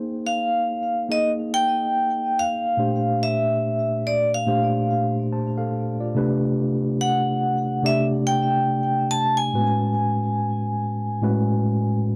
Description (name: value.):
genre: R&B.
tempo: 71 BPM.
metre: 4/4.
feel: swing 64% on 16ths.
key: unclear.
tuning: A4 = 440 Hz.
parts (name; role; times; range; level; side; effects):
mellow tine electric piano; accompaniment; 0.0-12.2 s; A2 to A5; -25 LUFS; equal; none.
vibraphone with hard mallets; melody; 0.3-12.0 s; D5 to A5; -25 LUFS; equal; tape echo.
room: light reverb.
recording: dry, close 1970s-style studio recording.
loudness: -22 LUFS.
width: mono.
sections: 0.0-12.2 A section.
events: none.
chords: 0.0 Abmaj9; 2.8 Bbmaj9; 6.1 Csus2; 9.5 Amaj9.